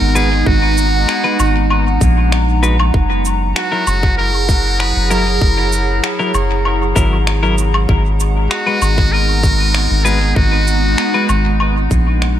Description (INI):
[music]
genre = ambient dub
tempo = 97 BPM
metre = 4/4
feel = straight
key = G# minor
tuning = A4 = 438 Hz
[part]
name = trumpet with metal mute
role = melody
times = 0.0-11.6 s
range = F#4 to B4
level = -20 LUFS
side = equal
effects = dub echo
[part]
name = warbly tape-like pad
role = sustained chords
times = 0.0-12.4 s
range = F#3 to A#5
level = -19 LUFS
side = right 1 dB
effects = chorus, built-in reverb
[part]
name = soft dub sub bass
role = bass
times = 0.0-12.4 s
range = F#1 to A#1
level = -15 LUFS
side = equal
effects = none
[part]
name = clean electric guitar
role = stabs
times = 0.2-11.3 s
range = F#3 to B4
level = -22 LUFS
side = left 3 dB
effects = dub echo
[part]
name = electronic cabasa, finger snaps and woodblock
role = drums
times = 0.2-12.3 s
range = none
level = -23 LUFS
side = equal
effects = dub echo
[part]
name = electronic kick drum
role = drums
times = 0.5-12.0 s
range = none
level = -15 LUFS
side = equal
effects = none
[sound]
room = light reverb, digital ambience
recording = none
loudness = -12 LUFS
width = side -11 dB against mid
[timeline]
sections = 0.0-12.4 A section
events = fade-out 11.2-12.4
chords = 0.0 G#m7; 2.9 F#7; 7.9 G#m7